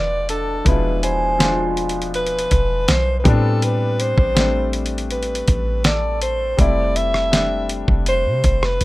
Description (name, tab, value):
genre	contemporary R&B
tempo	81 BPM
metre	4/4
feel	straight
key	A minor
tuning	A4 = 442 Hz
part	breathy alto saxophone	melody	0.0-8.8 s	A4 to E5	-22 LUFS	equal	tape echo
part	felt-muted upright piano	accompaniment	0.0-8.8 s	B2 to F4	-26 LUFS	left 4 dB	none
part	warm 808-style bass	bass	0.0-8.8 s	E1 to C3	-22 LUFS	equal	none
part	cimbalom	texture	0.0-8.8 s	D4 to B5	-27 LUFS	equal	tape echo
part	dusty soul sampler-style drum kit	drums	0.3-8.8 s	hi-hat, kick drum, rim click, snare drum	-19 LUFS	equal	none
room	little or no reverb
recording	rough home demo mix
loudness	-16 LUFS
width	side -19 dB against mid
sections	0.0-8.8 A section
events	none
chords	0.0 E7b9; 3.3 Am11; 6.6 Fmaj7